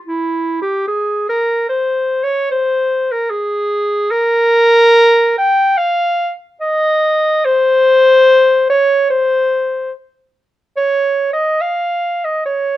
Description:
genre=classical, baroque-style fantasia for unaccompanied clarinet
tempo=72 BPM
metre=4/4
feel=rubato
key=unclear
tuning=A4 = 441 Hz
part: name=clear clarinet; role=solo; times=0.1-12.8 s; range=E4 to G5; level=-12 LUFS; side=equal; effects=none
room=light reverb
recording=dark, warm production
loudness=-12 LUFS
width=side -14 dB against mid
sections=0.0-12.8 A section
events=none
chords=none

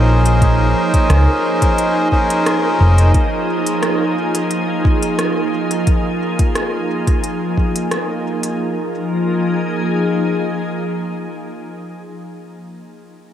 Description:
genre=ambient dub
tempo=88 BPM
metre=4/4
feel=straight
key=F minor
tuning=A4 = 440 Hz
part: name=soft additive organ-like pad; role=sustained chords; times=0.0-11.9 s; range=F3 to Ab4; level=-19 LUFS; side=right 1 dB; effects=ensemble chorus, built-in reverb
part: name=melodica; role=stabs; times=0.0-3.1 s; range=Db4 to C5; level=-20 LUFS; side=left 1 dB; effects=dub echo
part: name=hollow-body short-scale fingered electric bass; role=bass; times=0.0-3.1 s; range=F1 to Db2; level=-12 LUFS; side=equal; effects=none
part: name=organic electronic drum kit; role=drums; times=0.3-8.6 s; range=hi-hat, rim click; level=-26 LUFS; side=equal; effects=overdrive, dub echo
part: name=electronic kick drum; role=drums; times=0.4-7.7 s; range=none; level=-15 LUFS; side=equal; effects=overdrive
room=wet cathedral reverb, RT60 6.1 s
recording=dreamy mix soaked in reverb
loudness=-14 LUFS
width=side -10 dB against mid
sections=0.0-8.6 A section; 8.6-11.3 B section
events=none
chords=0.0 Bbm11; 3.1 Fm7

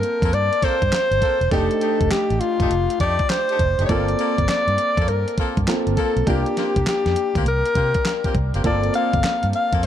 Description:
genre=R&B, new jack swing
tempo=101 BPM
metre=4/4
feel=swing 65% on 16ths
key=G minor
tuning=A4 = 441 Hz
part: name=breathy alto saxophone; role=melody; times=0.0-9.9 s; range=F4 to F5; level=-21 LUFS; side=left 2 dB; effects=digital delay
part: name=warm baby grand piano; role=accompaniment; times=0.0-9.9 s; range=A3 to A5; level=-27 LUFS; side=right 3 dB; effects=none
part: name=clean 12-bit digital drum machine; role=drums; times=0.0-9.9 s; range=handclaps, hi-hat, kick drum, snare drum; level=-24 LUFS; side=equal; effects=overdrive
part: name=warm horn section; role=stabs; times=0.2-9.8 s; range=A3 to A4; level=-30 LUFS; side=left 1 dB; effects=none
part: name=vintage muted fingered electric bass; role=bass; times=0.2-9.9 s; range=E1 to C3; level=-23 LUFS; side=equal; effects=none
room=moderate plate reverb, RT60 2.0 s, small room ambience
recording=dark, warm production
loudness=-17 LUFS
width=side -10 dB against mid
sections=0.0-9.9 A section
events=none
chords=0.0 Gm11; 1.5 F13; 3.9 Gm11; 6.3 C7sus4; 8.6 Gm11

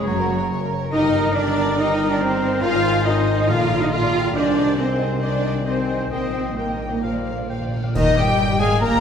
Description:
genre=classical, dramatic, fast romantic movement for symphony orchestra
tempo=139 BPM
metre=4/4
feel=rubato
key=Eb major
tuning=A4 = 438 Hz
part: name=warm symphonic violin section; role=melody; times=0.0-9.0 s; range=G4 to Bb5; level=-28 LUFS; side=left 4 dB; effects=none
part: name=bright clarinet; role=second line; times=0.0-9.0 s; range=Eb4 to F5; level=-31 LUFS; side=left 2 dB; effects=none
part: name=mellow hollow flute section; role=second line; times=0.0-9.0 s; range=Eb5 to Bb5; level=-30 LUFS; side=right 1 dB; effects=none
part: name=warm oboe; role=second line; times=0.0-9.0 s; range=Eb4 to G5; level=-32 LUFS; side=equal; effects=none
part: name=warm studio violin section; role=second line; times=0.0-9.0 s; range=F#4 to G5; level=-29 LUFS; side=left 2 dB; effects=none
part: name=mellow bassoon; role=accompaniment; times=0.0-9.0 s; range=C#3 to Bb3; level=-28 LUFS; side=right 2 dB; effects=none
part: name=warm symphonic viola section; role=accompaniment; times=0.0-9.0 s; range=Eb3 to F4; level=-29 LUFS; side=right 1 dB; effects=none
part: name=mellow French horn section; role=sustained chords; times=0.0-9.0 s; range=Eb3 to F4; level=-28 LUFS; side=left 6 dB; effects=none
part: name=concert harp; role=arpeggios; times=0.0-9.0 s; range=F#2 to C#6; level=-30 LUFS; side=left 5 dB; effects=none
part: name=rich symphonic double bass section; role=bass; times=0.0-9.0 s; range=F#1 to Eb2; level=-26 LUFS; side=right 2 dB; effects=none
part: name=warm symphonic cello section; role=bass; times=0.0-9.0 s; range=Eb3 to F4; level=-24 LUFS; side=right 2 dB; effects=none
part: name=timpani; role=percussion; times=3.5-4.1, 7.0-8.6 s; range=Bb2 to Eb3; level=-27 LUFS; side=equal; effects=none
part: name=cymbal swell, clash cymbals and concert bass drum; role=percussion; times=4.4-8.8 s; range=none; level=-31 LUFS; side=equal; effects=none
room=wet scoring stage reverb, RT60 2.1 s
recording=heard from further back in the room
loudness=-18 LUFS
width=side -7 dB against mid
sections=0.0-7.9 A section; 7.9-9.0 B section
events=timpani fill 7.0-7.9; band accent 7.9-8.4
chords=0.1 F#; 0.9 Eb/G; 2.6 Ab; 3.5 Bb; 4.4 Ab/C; 6.1 Eb/Bb; 7.0 Bb; 7.9 Eb

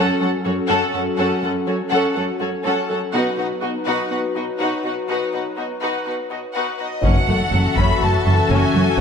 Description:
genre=cinematic, hybrid orchestral and electronic film score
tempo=123 BPM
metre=4/4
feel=straight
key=F# dorian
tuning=A4 = 440 Hz
part: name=rich symphonic violin section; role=second line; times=0.0-9.0 s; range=F#4 to F#5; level=-24 LUFS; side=left 3 dB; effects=none
part: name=clear symphonic viola section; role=accompaniment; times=0.0-9.0 s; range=F#3 to A4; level=-25 LUFS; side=right 1 dB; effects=none
part: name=hollow soft pad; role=sustained chords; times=0.0-9.0 s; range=E3 to B4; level=-24 LUFS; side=left 3 dB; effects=chorus
part: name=smooth synth bass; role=riff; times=0.0-8.9 s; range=F#2 to B3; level=-25 LUFS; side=right 1 dB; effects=none
part: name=warm symphonic cello section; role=bass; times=0.0-9.0 s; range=F#2 to B2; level=-28 LUFS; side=right 2 dB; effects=none
part: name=rich symphonic violin section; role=melody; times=6.8-9.0 s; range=D#5 to B5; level=-22 LUFS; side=left 3 dB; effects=none
part: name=rich symphonic double bass section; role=bass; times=7.0-8.8 s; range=F#1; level=-24 LUFS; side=right 3 dB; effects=none
part: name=taiko ensemble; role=drums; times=7.0-9.0 s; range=none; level=-22 LUFS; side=left 1 dB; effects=none
room=moderate concert hall reverb, RT60 2.3 s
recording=high-pass filter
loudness=-18 LUFS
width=side -6 dB against mid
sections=0.0-7.0 A section; 7.0-9.0 B section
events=build-up 0.0-7.0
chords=0.0 F#m; 3.1 B; 7.0 F#m7

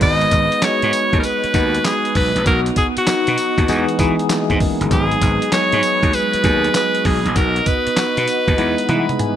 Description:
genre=R&B, new jack swing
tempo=98 BPM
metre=4/4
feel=swing 66% on 16ths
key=unclear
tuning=A4 = 440 Hz
part: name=edgy alto saxophone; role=melody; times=0.0-9.4 s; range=F#4 to D#5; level=-18 LUFS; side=equal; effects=none
part: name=tine electric piano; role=accompaniment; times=0.0-9.4 s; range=E3 to G#5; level=-21 LUFS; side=left 1 dB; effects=medium stereo tremolo
part: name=phased analog pad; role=sustained chords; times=0.0-9.4 s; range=E3 to D#5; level=-27 LUFS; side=left 1 dB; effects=phaser, chorus
part: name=gritty slap bass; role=bass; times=0.0-9.2 s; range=G1 to E3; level=-20 LUFS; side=equal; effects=overdrive
part: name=dusty soul sampler-style drum kit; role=drums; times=0.0-9.4 s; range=crash cymbal, handclaps, hi-hat, kick drum, snare drum, tambourine, toms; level=-21 LUFS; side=equal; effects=none
room=light reverb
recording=bright 1980s-style digital production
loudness=-14 LUFS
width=side -10 dB against mid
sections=0.0-9.4 A section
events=drum fill 8.6-9.4; tine electric piano fill 8.6-9.4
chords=0.0 G#m7; 2.5 B; 3.7 Emaj7; 4.9 G#m7; 7.4 B; 8.6 Emaj7

